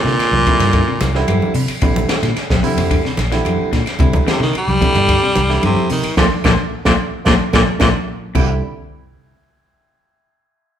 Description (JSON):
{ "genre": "afrobeat", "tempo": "110 BPM", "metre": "4/4", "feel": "straight", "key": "C mixolydian", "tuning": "A4 = 440 Hz", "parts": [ { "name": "raspy baritone saxophone", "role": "melody", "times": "0.0-7.9 s", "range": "Bb2 to G3", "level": "-17 LUFS", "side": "equal", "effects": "none" }, { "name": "barky tine electric piano", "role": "accompaniment", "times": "0.0-8.6 s", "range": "D3 to E4", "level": "-23 LUFS", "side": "right 4 dB", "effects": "overdrive" }, { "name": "fingered electric bass", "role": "bass", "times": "0.0-8.6 s", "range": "Bb1 to C3", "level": "-20 LUFS", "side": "equal", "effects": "none" }, { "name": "electric guitar at the edge of break-up", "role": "arpeggios", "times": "0.1-8.5 s", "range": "Bb2 to F3", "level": "-23 LUFS", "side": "left 5 dB", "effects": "none" }, { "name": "compact cocktail drum kit", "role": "drums", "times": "0.1-8.5 s", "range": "crash cymbal, hi-hat, kick drum, ride cymbal, snare drum", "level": "-19 LUFS", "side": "equal", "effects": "none" }, { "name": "claves", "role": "percussion", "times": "0.2-8.5 s", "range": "none", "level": "-32 LUFS", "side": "right 5 dB", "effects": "none" }, { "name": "congas", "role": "percussion", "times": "0.2-8.5 s", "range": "none", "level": "-23 LUFS", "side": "right 1 dB", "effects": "none" } ], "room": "wet large studio reverb, RT60 1.1 s", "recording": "band playing live in one room", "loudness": "-13 LUFS", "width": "side -9 dB against mid", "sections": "0.0-8.4 A section; 8.4-10.5 B section", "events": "baritone saxophone solo 0.0-8.4; band accent 6.2-8.4; drum fill 7.3-8.4; tine electric piano fill 7.3-8.4", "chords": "0.0 C9; 1.8 Bbadd9; 4.0 Cadd9; 6.2 Bbmaj7; 8.4 Cadd9", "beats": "0.20 0.74 1.28 | 1.83 2.37 2.91 3.46 | 4.00 4.54 5.09 5.63 | 6.18 6.72 7.26 7.81 | 8.35" }